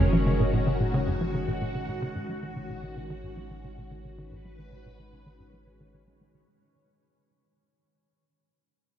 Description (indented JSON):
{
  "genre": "ambient, sequencer-driven space music",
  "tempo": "111 BPM",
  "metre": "4/4",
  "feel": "straight",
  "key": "unclear",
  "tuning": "A4 = 440 Hz",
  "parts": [
    { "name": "phased string machine", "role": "sustained chords", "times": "0.0-6.5 s", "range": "Eb3 to Cb5", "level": "-32 LUFS", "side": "equal", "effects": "ensemble chorus, phaser" },
    { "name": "tight sequencer bass", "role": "riff", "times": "0.0-6.4 s", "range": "Gb2 to Ab3", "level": "-28 LUFS", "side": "equal", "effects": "tape echo" },
    { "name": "warm sub bass", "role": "bass", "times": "0.0-6.5 s", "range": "Gb1 to Ab1", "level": "-34 LUFS", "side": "equal", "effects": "none" },
    { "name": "pulsing gated texture", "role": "texture", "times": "0.0-6.5 s", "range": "Db4 to Db5", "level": "-39 LUFS", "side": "left 2 dB", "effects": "chorus, built-in reverb" }
  ],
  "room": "wet cathedral reverb, RT60 5.1 s",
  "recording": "in a vast, echoing space",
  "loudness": "-26 LUFS",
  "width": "side -10 dB against mid",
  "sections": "0.0-6.5 A section",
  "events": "fade-out 0.0-6.5; filter sweep on analog synth bass 0.0-6.5",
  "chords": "0.0 Gb; 2.2 Abm"
}